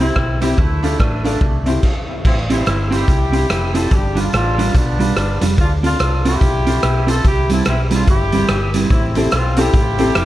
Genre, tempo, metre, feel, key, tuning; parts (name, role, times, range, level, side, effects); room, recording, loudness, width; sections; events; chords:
ska; 144 BPM; 4/4; swing 61% on 8ths; C major; A4 = 439 Hz
warm horn section; melody; 0.0-10.2 s; A3 to A4; -21 LUFS; equal; analog delay, plate reverb
clean electric guitar; accompaniment; 0.0-10.2 s; G3 to D5; -21 LUFS; right 2 dB; spring reverb, plate reverb
tack piano; stabs; 0.0-1.8, 9.2-10.1 s; C4 to A4; -23 LUFS; left 3 dB; analog delay, plate reverb
hollow-body short-scale fingered electric bass; bass; 0.0-10.2 s; F1 to D2; -19 LUFS; equal
raw garage drum kit; drums; 0.2-10.2 s; crash cymbal, hi-hat, kick drum, rim click; -18 LUFS; equal
light reverb; dark, warm production; -14 LUFS; side -14 dB against mid
0.0-2.3 A section; 2.3-10.2 B section
stop 1.8-2.3
0.0 C; 0.6 Dm; 1.4 C; 2.3 Am7; 3.9 G7; 5.6 Dm7; 7.2 Cmaj7; 8.9 Am7